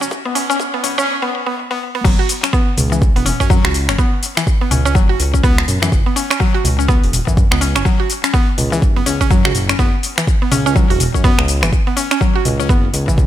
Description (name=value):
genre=afro house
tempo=124 BPM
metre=4/4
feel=swing 60% on 16ths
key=unclear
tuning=A4 = 440 Hz
part: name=mallet-like synth pluck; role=arpeggios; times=0.0-13.1 s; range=E3 to F#4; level=-18 LUFS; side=equal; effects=chorus, sidechain pumping, ping-pong delay
part: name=smooth synth bass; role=bass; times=0.0-13.3 s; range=E1 to F#2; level=-19 LUFS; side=equal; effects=sidechain pumping
part: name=afro-pop drum kit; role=drums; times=0.0-13.3 s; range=crash cymbal, finger snaps, hi-hat, shaker, toms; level=-20 LUFS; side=equal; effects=overdrive, high-pass filter on hats, high-pass filter on perc, high-pass filter on toms, high-pass filter on cymbals, high-pass filter on snare, high-pass filter on room
part: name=electronic kick drum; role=drums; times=0.1-13.3 s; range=none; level=-14 LUFS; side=equal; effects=overdrive, high-pass filter on kick, high-pass filter on room
room=light reverb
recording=high-pass filter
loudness=-13 LUFS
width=side -12 dB against mid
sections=0.0-2.0 A section; 2.0-13.3 B section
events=build-up 0.0-2.0; drum fill 0.0-1.1, 1.6-2.0; break 1.1-2.0; drop 2.0-13.3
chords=0.0 N.C.; 2.0 F#7(no3)